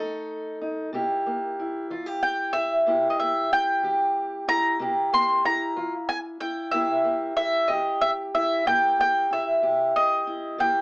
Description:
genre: acoustic country blues, solo or duo.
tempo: 62 BPM (dotted quarters).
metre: 12/8.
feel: straight.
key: unclear.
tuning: A4 = 442 Hz.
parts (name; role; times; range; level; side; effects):
fingerpicked steel-string acoustic guitar; accompaniment; 0.0-10.8 s; C3 to A4; -27 LUFS; equal; none.
mandolin; melody; 2.2-10.8 s; Eb5 to C6; -22 LUFS; equal; none.
room: wet small room reverb, RT60 0.5 s.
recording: small speaker sound.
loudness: -22 LUFS.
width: side -26 dB against mid.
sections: 0.0-10.8 A section.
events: none.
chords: 0.0 F7; 0.9 C7.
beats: | 0.93 1.90 2.86 3.83 | 4.79 5.76 6.73 7.69 | 8.66 9.62 10.59.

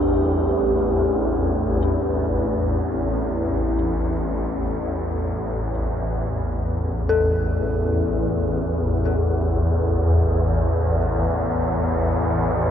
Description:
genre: dark ambient drone.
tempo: free time.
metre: none.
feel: none.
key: unclear.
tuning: A4 = 440 Hz.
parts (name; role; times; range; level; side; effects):
deep dark ambient pad; sustained chords; 0.0-6.1 s; A3 to G4; -28 LUFS; right 1 dB; chorus, built-in reverb.
dark detuned synth bell; arpeggios; 0.0-12.7 s; D4 to A4; -28 LUFS; left 2 dB; chorus, ping-pong delay.
swarming drone; drone; 0.0-12.7 s; A1 to E2; -20 LUFS; equal; built-in reverb.
bronze singing bowl; texture; 0.0-6.1 s; none; barely audible; none; none.
room: moderate huge ambient reverb, RT60 8.4 s.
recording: none.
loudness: -19 LUFS.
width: side -9 dB against mid.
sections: 0.0-6.1 A section; 6.1-12.7 B section.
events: none.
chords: 0.0 A5.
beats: free time.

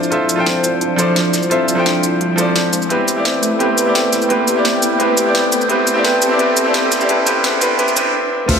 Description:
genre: liquid drum and bass.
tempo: 172 BPM.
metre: 4/4.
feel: straight.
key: unclear.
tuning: A4 = 440 Hz.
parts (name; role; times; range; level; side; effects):
bright baby grand piano; accompaniment; 0.0-8.6 s; F3 to G5; -16 LUFS; equal; vintage 12-bit sampler grit, ping-pong delay.
lush unison pad; sustained chords; 0.0-8.1 s; F3 to G5; -20 LUFS; equal; chorus, phaser, sidechain pumping.
felt-muted upright piano; arpeggios; 0.0-8.6 s; B3 to G4; -21 LUFS; equal; low-pass filter, digital delay.
pop drum kit; drums; 0.0-8.6 s; cabasa, crash cymbal, hi-hat, snare drum; -20 LUFS; equal; high-pass filter on hats, high-pass filter on perc, high-pass filter on snare, high-pass filter on cymbals.
riser and downlifter; sound effects; 0.3-8.6 s; none; -24 LUFS; equal; none.
saturated sub bass; bass; 8.5-8.6 s; D2; -15 LUFS; equal; none.
electronic kick drum; drums; 8.5-8.6 s; none; -18 LUFS; equal; none.
room: wet recital hall reverb, RT60 1.4 s, digital ambience.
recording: high-pass filter.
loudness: -13 LUFS.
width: side -6 dB against mid.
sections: 0.0-8.5 A section.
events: build-up 0.0-8.5; filter sweep on analog synth pad 0.0-8.5; filter sweep on felt piano 0.0-8.5; riser 0.3-8.1; stop 8.1-8.5.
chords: 0.0 Dm9; 2.9 Am9.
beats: | 0.12 0.46 0.81 1.16 | 1.51 1.86 2.21 2.56 | 2.91 3.25 3.60 3.95 | 4.30 4.65 5.00 5.35 | 5.70 6.05 6.39 6.74 | 7.09 7.44 7.79 8.14 | 8.49.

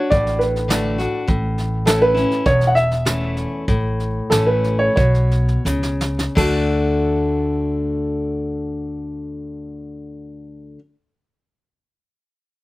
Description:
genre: honky-tonk and classic country.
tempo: 82-103 BPM.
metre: 4/4.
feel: straight.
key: D major.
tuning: A4 = 440 Hz.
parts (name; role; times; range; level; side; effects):
warm upright piano; melody; 0.0-10.7 s; A4 to F#5; -18 LUFS; right 1 dB; slapback echo.
picked steel-string acoustic guitar; accompaniment; 0.0-10.8 s; E2 to F#4; -22 LUFS; left 2 dB; none.
clear grand piano; accompaniment; 0.1-1.2 s; D4 to A4; -32 LUFS; right 4 dB; slapback echo.
upright bass; bass; 0.1-10.7 s; E1 to D2; -22 LUFS; equal; none.
soft brush drum kit; drums; 0.1-6.5 s; crash cymbal, hi-hat, kick drum, snare drum; -23 LUFS; right 1 dB; none.
room: little or no reverb.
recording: recorded outdoors, with no room sound.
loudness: -16 LUFS.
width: side -19 dB against mid.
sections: 0.0-6.4 A section; 6.4-9.3 B section.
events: slowing down 1.3-6.4; drum fill 5.7-6.4.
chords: 0.0 D; 1.3 A; 6.4 D.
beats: 0.11 0.69 | 1.28 1.86 2.46 3.06 | 3.68 4.31 4.97 5.65 | 6.36 7.09 7.82 8.55.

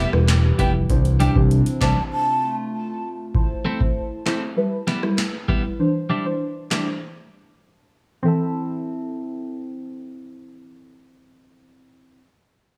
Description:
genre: dancehall.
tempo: 98 BPM.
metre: 4/4.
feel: straight.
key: A minor.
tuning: A4 = 440 Hz.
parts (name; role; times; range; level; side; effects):
breathy bright baroque flute; melody; 0.0-2.6 s; G5 to A5; -28 LUFS; equal; tape echo.
hollow soft pad; sustained chords; 0.0-3.3 s; C3 to B4; -31 LUFS; equal; chorus, sidechain pumping.
twelve-string electric guitar; arpeggios; 0.0-12.2 s; G3 to A4; -29 LUFS; equal; low-pass filter.
fat analog bass; bass; 0.0-1.9 s; E1 to C2; -20 LUFS; equal; none.
deep mellow chord stab; accompaniment; 0.1-12.2 s; E3 to C5; -27 LUFS; equal; chorus, phaser, sidechain pumping, low-pass filter.
booming analog drum machine; drums; 0.1-6.9 s; handclaps, hi-hat, kick drum, rim click, snare drum; -25 LUFS; equal; none.
room: light reverb, digital ambience.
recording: small room ambience.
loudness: -22 LUFS.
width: mono.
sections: 0.0-3.3 A section; 3.3-8.2 B section; 8.2-10.7 C section.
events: break 2.1-3.3, 7.0-8.2; filter sweep 3.3-8.2.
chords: 0.0 Em; 0.9 Cadd9; 2.1 F; 3.3 Am; 4.6 Em; 5.8 Cadd9; 7.0 N.C.; 8.2 Am.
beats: 0.28 | 0.90 1.51 2.12 2.73 | 3.35 3.96 4.57 5.18 | 5.79 6.41 7.02 7.63 | 8.24 8.86 9.47 10.08.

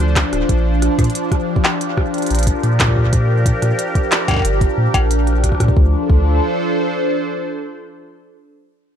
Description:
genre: IDM.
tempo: 91 BPM.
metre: 4/4.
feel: straight.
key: D minor.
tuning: A4 = 436 Hz.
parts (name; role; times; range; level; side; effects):
phased analog pad; sustained chords; 0.0-8.4 s; F3 to C5; -19 LUFS; equal; phaser, chorus.
warm sub bass; bass; 0.0-6.4 s; D1 to Bb2; -16 LUFS; equal; tube saturation.
organic electronic drum kit; drums; 0.0-5.7 s; cowbell, handclaps, hi-hat, rim click; -21 LUFS; equal; digital delay.
electronic kick drum; drums; 0.2-6.2 s; none; -17 LUFS; equal; none.
room: little or no reverb.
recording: none.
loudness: -14 LUFS.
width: side -8 dB against mid.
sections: 0.0-5.8 A section; 5.8-8.4 B section.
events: none.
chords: 0.5 Bb6; 5.8 Dm7.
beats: | 0.49 1.15 1.81 2.47 | 3.13 3.79 4.45 5.11 | 5.77 6.43 7.08 7.74.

